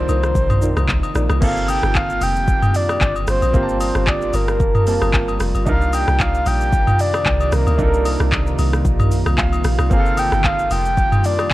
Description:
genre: amapiano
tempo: 113 BPM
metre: 4/4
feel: swing 55% on 16ths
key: G minor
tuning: A4 = 441 Hz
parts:
  - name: breathy flute-like synth lead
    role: melody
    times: 0.0-11.5 s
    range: Bb4 to G5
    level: -21 LUFS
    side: equal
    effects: chorus
  - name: clear grand piano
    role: accompaniment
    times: 0.0-11.5 s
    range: Bb3 to A5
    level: -28 LUFS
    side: right 4 dB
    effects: none
  - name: deep dark ambient pad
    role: sustained chords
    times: 0.0-11.5 s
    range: C3 to D5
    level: -26 LUFS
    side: right 1 dB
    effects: chorus, built-in reverb, sidechain pumping
  - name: deep log drum bass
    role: bass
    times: 0.0-11.5 s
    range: F1 to D2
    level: -20 LUFS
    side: equal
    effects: none
  - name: deep mellow chord stab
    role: stabs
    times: 0.1-1.2 s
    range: Eb4 to D5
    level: -29 LUFS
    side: equal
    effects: none
  - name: afro-pop drum kit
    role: drums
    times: 0.1-11.5 s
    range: crash cymbal, handclaps, hi-hat, kick drum, rim click, shaker, toms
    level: -20 LUFS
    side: equal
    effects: overdrive
  - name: agogo bells and woodblock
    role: percussion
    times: 0.1-11.5 s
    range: none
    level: -29 LUFS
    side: left 4 dB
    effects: none
room: digital ambience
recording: worn, warbling old tape, cassette tape, warbly pitch drift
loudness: -15 LUFS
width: side -16 dB against mid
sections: 0.0-1.4 A section; 1.4-11.5 B section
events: drop 1.4-11.5; grand piano fill 9.1-9.9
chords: 0.0 Cm11; 1.4 Gm11; 5.7 Cm11; 9.9 Gm11

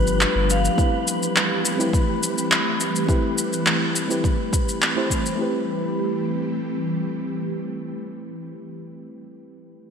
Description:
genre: sunset chillout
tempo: 104 BPM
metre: 4/4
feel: straight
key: A minor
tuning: A4 = 442 Hz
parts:
  - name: vibraphone with medium hard mallets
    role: melody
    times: 0.0-0.8 s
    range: B4 to F5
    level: -27 LUFS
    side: left 3 dB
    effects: ping-pong delay
  - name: mellow FM electric piano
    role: accompaniment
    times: 0.0-9.9 s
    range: A3 to C5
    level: -28 LUFS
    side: equal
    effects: chorus, auto-pan, digital delay
  - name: ethereal airy pad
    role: sustained chords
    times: 0.0-8.5 s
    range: E3 to G4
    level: -27 LUFS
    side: right 1 dB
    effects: ensemble chorus, built-in reverb
  - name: round analog bass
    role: bass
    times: 0.0-0.7 s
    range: G1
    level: -23 LUFS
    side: equal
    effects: none
  - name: wind-like tuned noise texture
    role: texture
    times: 0.0-5.4 s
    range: B4 to B5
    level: -32 LUFS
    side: left 1 dB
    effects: built-in reverb
  - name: electronic shaker and handclaps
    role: drums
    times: 0.1-5.4 s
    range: none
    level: -23 LUFS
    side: equal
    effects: gated reverb
  - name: electronic kick drum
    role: drums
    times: 0.8-5.2 s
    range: none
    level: -22 LUFS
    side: equal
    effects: none
room: moderate plate reverb, RT60 3.0 s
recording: bright 1980s-style digital production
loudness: -20 LUFS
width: side -6 dB against mid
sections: 0.0-5.4 A section; 5.4-7.7 B section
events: none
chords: 0.0 G7; 0.8 Am7

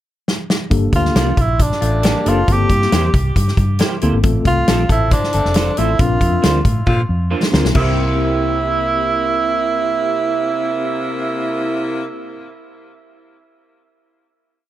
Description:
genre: uptempo 1960s-style soul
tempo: 136 BPM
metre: 4/4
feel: straight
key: C mixolydian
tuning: A4 = 440 Hz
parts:
  - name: natural country drum kit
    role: drums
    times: 0.3-7.9 s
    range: crash cymbal, hi-hat, kick drum, snare drum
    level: -17 LUFS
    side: equal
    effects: none
  - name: mellow tine electric piano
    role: accompaniment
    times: 0.7-12.4 s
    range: A3 to Bb4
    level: -23 LUFS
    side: left 4 dB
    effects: medium stereo tremolo, plate reverb
  - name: vintage muted fingered electric bass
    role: bass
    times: 0.7-12.4 s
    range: F1 to Bb2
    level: -18 LUFS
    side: equal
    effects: none
  - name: warm tenor saxophone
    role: melody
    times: 1.0-12.1 s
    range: D4 to G4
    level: -19 LUFS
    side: right 3 dB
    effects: tape echo
  - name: electric guitar through a small old amp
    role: stabs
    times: 1.2-12.4 s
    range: Bb3 to D5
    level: -26 LUFS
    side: right 6 dB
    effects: analog chorus, plate reverb
  - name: electric guitar through a small old amp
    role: riff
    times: 1.8-6.0 s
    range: A3 to C5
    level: -25 LUFS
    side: left 7 dB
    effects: none
  - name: clear saxophone section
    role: second line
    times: 6.9-12.1 s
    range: C3 to F4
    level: -24 LUFS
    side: left 1 dB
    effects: tape echo, plate reverb
room: light reverb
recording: none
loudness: -14 LUFS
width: side -13 dB against mid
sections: 0.0-0.7 pickup bar; 0.7-7.8 pre-chorus; 7.8-11.3 final chord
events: drum fill 0.3-0.7, 6.9-7.8; band accent 6.0-7.8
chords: 0.0 N.C.; 0.7 Gmadd9; 2.5 C7/G; 4.2 F/A; 6.0 Bbadd9; 7.8 C7

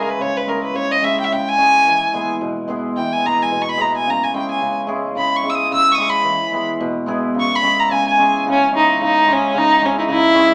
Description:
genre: balkan folk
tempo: 109 BPM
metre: 2/4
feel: swing 55% on 16ths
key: C# minor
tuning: A4 = 440 Hz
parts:
  - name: rich violin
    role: melody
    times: 0.0-10.5 s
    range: C#4 to E6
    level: -17 LUFS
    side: equal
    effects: none
  - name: cimbalom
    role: accompaniment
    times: 0.0-10.5 s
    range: B2 to G#4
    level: -24 LUFS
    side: equal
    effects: none
room: wet club reverb, RT60 0.9 s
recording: none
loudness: -17 LUFS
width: mono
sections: 0.0-8.5 A section; 8.5-10.5 B section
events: violin solo 0.0-8.5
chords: 0.0 C#m; 1.9 E; 4.1 C#m; 6.3 E; 7.4 C#m

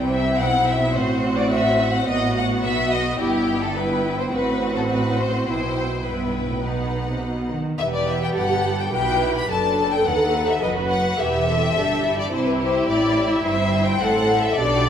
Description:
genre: quick classical-period movement for string orchestra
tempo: 106 BPM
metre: 4/4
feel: straight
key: E minor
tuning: A4 = 439 Hz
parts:
  - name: rich studio violin section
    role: melody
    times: 0.0-14.9 s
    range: B4 to B5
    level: -25 LUFS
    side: left 4 dB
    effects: none
  - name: rich studio viola section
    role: accompaniment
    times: 0.0-14.9 s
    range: B3 to B4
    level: -24 LUFS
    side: right 1 dB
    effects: none
  - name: clear studio double bass section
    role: bass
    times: 0.0-14.9 s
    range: E1 to D#2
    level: -29 LUFS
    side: right 3 dB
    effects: none
  - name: rich studio cello section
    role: bass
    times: 0.0-14.9 s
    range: D#2 to D#3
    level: -26 LUFS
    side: right 2 dB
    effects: none
  - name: rich studio violin section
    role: second line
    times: 0.1-14.9 s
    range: B3 to F#5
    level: -25 LUFS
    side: left 1 dB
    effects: none
room: wet recital hall reverb, RT60 1.7 s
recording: recorded in a church or concert hall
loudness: -18 LUFS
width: side -8 dB against mid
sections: 0.0-7.8 A section; 7.8-14.9 B section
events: none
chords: 0.0 C; 1.0 F#dim/A; 2.1 B5/A; 3.2 Em/G; 4.3 F#dim/A; 5.5 Em/B; 6.6 B; 7.8 Em; 10.1 B7/D#; 11.2 Em; 12.3 C

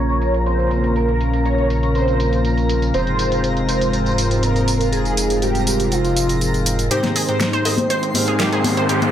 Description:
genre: progressive house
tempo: 121 BPM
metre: 4/4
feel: straight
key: Ab major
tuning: A4 = 439 Hz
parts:
  - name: wide unison lead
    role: melody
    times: 0.0-9.1 s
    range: F4 to Db5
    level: -23 LUFS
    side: right 2 dB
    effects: ensemble chorus, dub echo
  - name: warm analog pad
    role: sustained chords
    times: 0.0-9.1 s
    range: Ab2 to G5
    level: -23 LUFS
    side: right 1 dB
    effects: chorus
  - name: chorused polysynth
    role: stabs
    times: 0.0-9.1 s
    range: Ab2 to F5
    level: -23 LUFS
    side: left 3 dB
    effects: dub echo
  - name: round analog bass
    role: bass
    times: 0.0-6.9 s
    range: F1 to Bb1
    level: -22 LUFS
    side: equal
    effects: none
  - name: twinkling granular texture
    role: texture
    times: 0.0-9.1 s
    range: Bb5 to C6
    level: -30 LUFS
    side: equal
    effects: built-in reverb
  - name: deep house drum kit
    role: drums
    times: 0.1-9.1 s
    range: hi-hat, snare drum, tambourine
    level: -25 LUFS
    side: right 1 dB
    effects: overdrive, studio reverb
  - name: wide unison pluck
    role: arpeggios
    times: 6.9-9.0 s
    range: G4 to Eb5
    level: -23 LUFS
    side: right 1 dB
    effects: dub echo
  - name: riser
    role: sound effects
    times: 7.8-9.1 s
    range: none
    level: -26 LUFS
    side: right 1 dB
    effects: none
  - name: congas and cowbell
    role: percussion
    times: 7.0-9.1 s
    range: none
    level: -24 LUFS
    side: left 3 dB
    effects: none
room: light reverb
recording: low-pass filter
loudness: -16 LUFS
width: side -10 dB against mid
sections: 0.0-6.9 A section; 6.9-9.1 B section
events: filter sweep on analog polysynth 0.0-6.9; filter sweep on analog synth pad 0.0-6.9; filter sweep 0.0-6.9; build-up 6.9-9.1; riser 7.8-9.1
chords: 0.0 Bbmadd9; 2.9 Fm; 6.9 Abmaj7

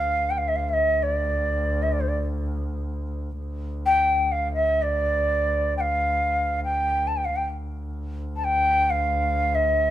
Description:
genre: Arabic maqam ensemble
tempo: free time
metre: none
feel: none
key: D maqam bayati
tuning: A4 = 440 Hz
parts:
  - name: breathy ney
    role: melody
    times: 0.0-9.9 s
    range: C5 to A5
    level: -22 LUFS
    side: equal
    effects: none
  - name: muted double bass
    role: drone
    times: 0.0-9.9 s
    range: D2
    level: -28 LUFS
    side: equal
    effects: none
room: light reverb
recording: band playing live in one room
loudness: -22 LUFS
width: side -12 dB against mid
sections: 0.0-3.4 A section; 3.4-9.9 A section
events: none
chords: none

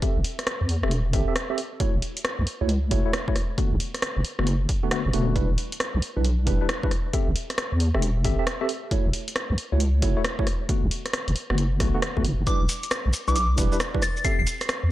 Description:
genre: UK garage, two-step garage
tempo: 135 BPM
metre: 4/4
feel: swing 65% on 16ths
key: E dorian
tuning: A4 = 440 Hz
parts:
  - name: tine electric piano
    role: stabs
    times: 0.0-14.4 s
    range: D3 to E5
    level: -29 LUFS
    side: equal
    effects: medium stereo tremolo, low-pass filter, tape echo
  - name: electronic kick drum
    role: drums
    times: 0.0-14.4 s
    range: none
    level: -26 LUFS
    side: equal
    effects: none
  - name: punchy analog drum machine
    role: drums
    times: 0.0-14.8 s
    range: hi-hat, rim click, shaker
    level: -29 LUFS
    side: equal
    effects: none
  - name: deep soft wobble bass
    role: bass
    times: 0.2-14.9 s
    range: E1 to E2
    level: -23 LUFS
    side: equal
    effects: chorus
  - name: soft synth bell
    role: melody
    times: 12.5-14.4 s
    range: D6 to C7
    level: -28 LUFS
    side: left 1 dB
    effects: chorus, phaser
room: digital ambience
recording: dry, gritty hardware recording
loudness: -22 LUFS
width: side -15 dB against mid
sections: 0.0-14.9 A section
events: none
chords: 0.0 Am7; 1.8 F#m7; 3.4 Bm7; 5.4 Em7; 6.9 Am7; 8.9 F#m7; 10.5 Bm7; 12.5 Em7; 14.0 Am7

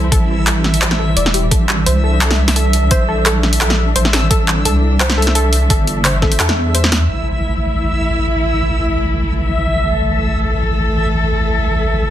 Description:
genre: half-time drum and bass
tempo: 172 BPM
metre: 4/4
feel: swing 53% on 16ths, half-time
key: A phrygian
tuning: A4 = 439 Hz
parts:
  - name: dark chamber cello section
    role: sustained chords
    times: 0.0-12.1 s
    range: E3 to A4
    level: -21 LUFS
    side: equal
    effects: sidechain pumping
  - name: warbly dusty pluck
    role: arpeggios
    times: 0.0-6.9 s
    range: G4 to D5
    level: -22 LUFS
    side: left 1 dB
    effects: chorus, dub echo
  - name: deep soft wobble bass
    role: bass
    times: 0.0-12.1 s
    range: E1 to E2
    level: -16 LUFS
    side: equal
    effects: chorus
  - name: backwards swelling texture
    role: texture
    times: 0.0-12.1 s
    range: E5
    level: -23 LUFS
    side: equal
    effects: built-in reverb
  - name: drum and bass drum kit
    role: drums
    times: 0.1-7.0 s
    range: handclaps, hi-hat, snare drum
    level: -16 LUFS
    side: equal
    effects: overdrive, small room ambience
  - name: electronic kick drum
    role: drums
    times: 0.1-6.3 s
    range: none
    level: -15 LUFS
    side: equal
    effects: overdrive, small room ambience
room: digital ambience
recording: dense, heavily limited modern master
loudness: -12 LUFS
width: side -11 dB against mid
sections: 0.0-7.1 A section; 7.1-12.1 B section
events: kick drops out 6.7-7.1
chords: 0.0 A5

